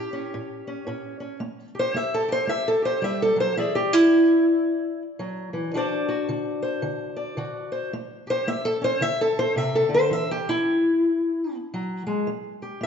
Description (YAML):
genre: acoustic country blues, solo or duo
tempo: 110 BPM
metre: 4/4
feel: swing 62% on 8ths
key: unclear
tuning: A4 = 442 Hz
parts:
  - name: fingerpicked steel-string acoustic guitar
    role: solo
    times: 0.0-12.9 s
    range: A2 to E5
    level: -22 LUFS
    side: equal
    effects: none
room: moderate scoring stage reverb, RT60 1.6 s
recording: recorded in a church or concert hall, nothing above 7.6 kHz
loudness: -21 LUFS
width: side -7 dB against mid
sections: 0.0-12.3 A section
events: steel-string acoustic guitar solo 0.0-12.3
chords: 0.0 A7; 3.6 E7(no3); 5.7 D7; 7.9 A7; 9.0 C69; 10.1 N.C.; 12.3 A7(no3)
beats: 0.33 0.87 | 1.41 1.95 2.49 3.03 | 3.57 4.11 4.66 5.20 | 5.75 6.29 6.83 7.38 | 7.92 8.47 9.02 9.56 | 10.11 10.65 11.19 11.74 | 12.28 12.82